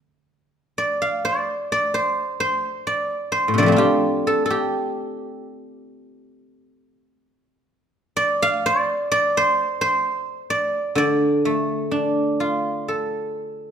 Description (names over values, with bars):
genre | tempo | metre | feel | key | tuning
chinese traditional, Chinese solo plucked strings | 64 BPM | 4/4 | rubato | D yu mode | A4 = 439 Hz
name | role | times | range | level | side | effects
guzheng | solo | 0.8-13.7 s | A2 to F5 | -19 LUFS | equal | none
room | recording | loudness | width
light reverb | minimal, uncompressed stereo recording | -19 LUFS | side -8 dB against mid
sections
0.0-13.7 A section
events
none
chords
none